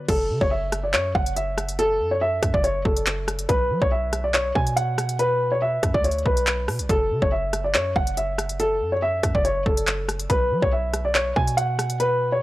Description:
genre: hip hop, drill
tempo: 141 BPM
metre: 4/4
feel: half-time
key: F# minor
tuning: A4 = 440 Hz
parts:
  - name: dark baby grand piano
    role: melody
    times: 0.0-12.4 s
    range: A4 to G#5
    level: -22 LUFS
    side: equal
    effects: low-pass filter
  - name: hard-hitting 808-style bass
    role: bass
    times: 0.1-12.4 s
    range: F#1 to F#3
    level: -27 LUFS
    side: equal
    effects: none
  - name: drill drum kit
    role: drums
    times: 0.1-12.1 s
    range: crash cymbal, handclaps, hi-hat, kick drum, rim click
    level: -24 LUFS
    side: equal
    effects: none
room: digital ambience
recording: dry, gritty hardware recording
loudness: -20 LUFS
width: side -17 dB against mid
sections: 0.1-12.4 A section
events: none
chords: 0.1 F#m; 3.5 N.C.; 6.9 F#m; 10.3 N.C.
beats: | 0.09 0.51 0.94 1.36 | 1.79 2.21 2.64 3.06 | 3.49 3.92 4.34 4.77 | 5.19 5.62 6.04 6.47 | 6.89 7.32 7.75 8.17 | 8.60 9.02 9.45 9.87 | 10.30 10.72 11.15 11.57 | 12.00

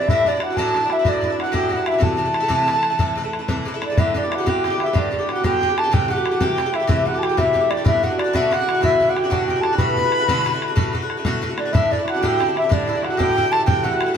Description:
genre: celtic folk, Celtic slide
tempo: 124 BPM (dotted quarters)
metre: 12/8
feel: straight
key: unclear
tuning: A4 = 440 Hz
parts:
  - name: bright reedy wooden flute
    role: melody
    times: 0.0-14.2 s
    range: D5 to B5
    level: -20 LUFS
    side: left 1 dB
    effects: none
  - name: cimbalom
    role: second line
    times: 0.0-14.2 s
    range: D4 to B4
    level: -24 LUFS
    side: right 2 dB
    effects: none
  - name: Irish bouzouki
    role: accompaniment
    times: 0.0-14.2 s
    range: G2 to G4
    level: -24 LUFS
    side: left 1 dB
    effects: none
  - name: bodhran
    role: percussion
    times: 0.1-14.1 s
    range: none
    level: -23 LUFS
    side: equal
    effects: none
room: wet stone room reverb, RT60 0.9 s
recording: band playing live in one room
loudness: -17 LUFS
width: side -8 dB against mid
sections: 0.0-4.0 A section; 4.0-14.2 A section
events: none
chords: 0.1 Dadd9; 2.0 Am; 4.0 G; 5.9 Am7; 7.8 Bm; 9.8 D6; 11.7 Dsus2; 13.7 Am/C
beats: | 0.07 0.55 1.04 1.53 | 2.02 2.50 2.99 3.48 | 3.96 4.45 4.93 5.42 | 5.91 6.39 6.88 7.36 | 7.85 8.33 8.82 9.30 | 9.79 10.27 10.76 11.24 | 11.73 12.21 12.70 13.18 | 13.67 14.15

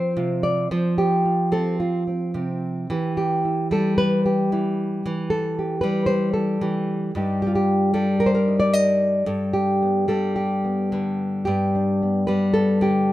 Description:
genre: folk, solo fingerstyle acoustic guitar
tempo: 111 BPM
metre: 4/4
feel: rubato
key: G mixolydian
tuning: A4 = 439 Hz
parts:
  - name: nylon-string guitar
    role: solo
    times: 0.0-13.1 s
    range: G2 to Eb5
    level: -19 LUFS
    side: equal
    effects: none
room: moderate studio reverb, RT60 0.9 s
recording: minimal, uncompressed stereo recording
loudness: -19 LUFS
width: side -15 dB against mid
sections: 0.0-11.5 A section; 11.5-13.1 B section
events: none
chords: 0.0 F5; 2.9 Emadd11; 7.1 Eb; 9.3 Gadd9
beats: 0.16 | 0.70 1.25 1.79 2.35 | 2.90 3.45 3.99 4.53 | 5.06 5.58 6.10 6.62 | 7.14 7.67 8.20 8.73 | 9.27 9.81 10.36 10.92 | 11.47 12.02 12.55 13.09

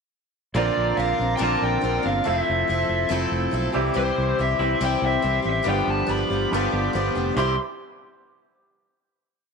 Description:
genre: folk rock and heartland rock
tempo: 141 BPM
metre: 4/4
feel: straight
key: C major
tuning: A4 = 440 Hz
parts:
  - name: picked twelve-string acoustic guitar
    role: accompaniment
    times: 0.5-7.6 s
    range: G2 to Bb4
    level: -28 LUFS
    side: left 10 dB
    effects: none
  - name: hand-pumped harmonium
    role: sustained chords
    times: 0.5-7.6 s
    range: C4 to C6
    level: -33 LUFS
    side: right 2 dB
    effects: none
  - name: fingered electric bass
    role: bass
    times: 0.5-7.6 s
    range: F1 to C2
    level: -27 LUFS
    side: right 1 dB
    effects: none
  - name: lead guitar through a small cranked amp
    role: melody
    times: 0.6-7.6 s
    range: C5 to C6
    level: -26 LUFS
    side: equal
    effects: overdrive
  - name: bright upright piano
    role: accompaniment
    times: 0.6-7.6 s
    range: D4 to F5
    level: -34 LUFS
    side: right 12 dB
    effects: none
  - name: twangy electric guitar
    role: riff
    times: 0.6-7.5 s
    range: G2 to G4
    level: -26 LUFS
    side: right 2 dB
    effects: spring reverb
room: moderate echo chamber reverb, RT60 1.5 s, small room ambience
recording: 1960s-style stereo with parts hard left and right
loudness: -20 LUFS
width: side -5 dB against mid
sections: 0.6-7.4 pre-chorus; 7.4-9.1 final chord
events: none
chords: 0.6 Bbadd9; 2.3 Fmaj7; 3.7 C; 5.7 G7; 7.4 C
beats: | 0.56 0.98 1.41 1.83 | 2.26 2.68 3.11 3.53 | 3.96 4.38 4.81 5.23 | 5.66 6.09 6.51 6.94 | 7.37

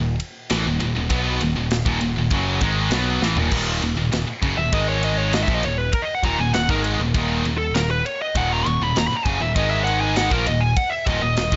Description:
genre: heavy metal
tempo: 99 BPM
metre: 4/4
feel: straight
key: Eb phrygian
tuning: A4 = 440 Hz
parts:
  - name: cranked stack guitar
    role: riff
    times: 0.0-11.6 s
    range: Eb2 to Cb4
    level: -31 LUFS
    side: equal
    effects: overdrive
  - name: heavy high-gain guitar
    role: riff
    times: 0.0-11.6 s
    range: Eb2 to Cb4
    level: -29 LUFS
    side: equal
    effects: distortion
  - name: high-gain distorted guitar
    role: riff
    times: 0.0-11.6 s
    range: Eb2 to Cb4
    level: -28 LUFS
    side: equal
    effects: distortion
  - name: modern bright picked electric bass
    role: bass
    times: 0.0-11.6 s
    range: Eb1 to Cb2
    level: -27 LUFS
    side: equal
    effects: none
  - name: tight metal drum kit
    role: drums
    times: 0.2-11.6 s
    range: crash cymbal, kick drum, ride cymbal, snare drum, toms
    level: -28 LUFS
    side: equal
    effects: none
  - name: high-gain lead guitar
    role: melody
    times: 4.6-11.6 s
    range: A4 to Db6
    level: -26 LUFS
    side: equal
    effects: distortion, digital delay
room: studio reverb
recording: nothing above 7.7 kHz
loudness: -21 LUFS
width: mono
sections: 0.0-3.5 A section; 3.5-11.6 B section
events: drum fill 3.2-3.5; lead electric guitar solo 3.5-11.6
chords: 0.0 Ebm; 4.7 Ab5; 5.5 Ebm; 9.6 Ab5; 10.3 Eb5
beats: 0.51 | 1.11 1.72 2.32 2.92 | 3.53 4.13 4.74 5.34 | 5.94 6.55 7.15 7.76 | 8.36 8.97 9.57 10.18 | 10.78 11.38

